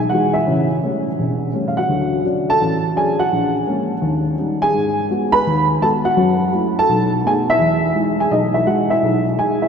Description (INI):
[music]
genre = solo jazz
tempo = 168 BPM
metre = 4/4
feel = swing 64% on 8ths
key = E major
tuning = A4 = 438 Hz
[part]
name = dark upright piano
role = solo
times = 0.0-9.7 s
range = E1 to B5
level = -15 LUFS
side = equal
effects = none
[sound]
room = wet cathedral reverb, RT60 5.7 s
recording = in a vast, echoing space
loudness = -15 LUFS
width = side -6 dB against mid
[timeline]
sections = 0.0-9.7 A section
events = none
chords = 0.5 A7; 1.9 Dmaj7; 3.3 A#m7; 4.0 D#7; 4.7 G#m7; 6.2 F#m7; 6.9 B7; 7.6 Emaj7